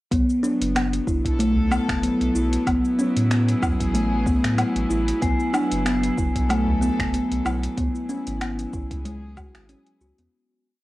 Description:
organic downtempo; 94 BPM; 4/4; swing 55% on 16ths; A4 = 440 Hz
rich chamber string section; sustained chords; 0.1-10.3 s; F#3 to A4; -30 LUFS; equal; vintage 12-bit sampler grit, sidechain pumping, cassette tape
kalimba; arpeggios; 0.1-10.3 s; G#3 to F#4; -23 LUFS; equal; cassette tape, analog delay
warm sub bass; bass; 0.1-10.3 s; F#1 to A2; -26 LUFS; equal; tube saturation, sidechain pumping
afro-pop drum kit; drums; 0.1-10.3 s; finger snaps, hi-hat, shaker, woodblock; -28 LUFS; equal; small room reverb
electronic kick drum; drums; 0.1-9.5 s; -26 LUFS; equal; small room reverb
udu; percussion; 1.6-9.5 s; -31 LUFS; left 1 dB
bronze singing bowl; texture; 5.2-10.3 s; G#5; -33 LUFS; left 2 dB; cassette tape, plate reverb
wet studio reverb, RT60 0.5 s; home recording on cassette; -20 LUFS; side -17 dB against mid
0.1-10.3 groove
fade-out 6.9-10.3
0.1 B7(no3); 2.7 Amaj7(no3); 5.2 Bm7; 7.8 C#m7

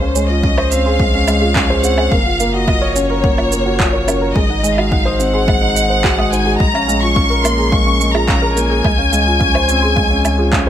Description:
piano and strings electronica; 107 BPM; 4/4; straight; A4 = 440 Hz
rich studio violin section; melody; 0.0-10.7 s; C5 to Db6; -18 LUFS; left 1 dB
soft round pluck; arpeggios; 0.0-10.7 s; Ab4 to F6; -26 LUFS; right 4 dB; chorus, sidechain pumping, ping-pong delay
dark baby grand piano; riff; 0.0-10.7 s; Ab3 to Eb5; -17 LUFS; equal
warm sub bass; bass; 0.0-10.7 s; Gb1 to Db2; -20 LUFS; equal; sidechain pumping
electronic shaker, woodblock and handclaps; drums; 0.2-10.6 s; -21 LUFS; right 2 dB; overdrive
electronic kick drum; drums; 0.4-10.6 s; -18 LUFS; equal; overdrive
digital ambience; -12 LUFS; side -10 dB against mid
0.0-10.7 A section
0.0 Dbmaj7; 2.1 Gbmaj7; 4.4 Ab7; 6.6 Bbm7; 8.8 Dbmaj7

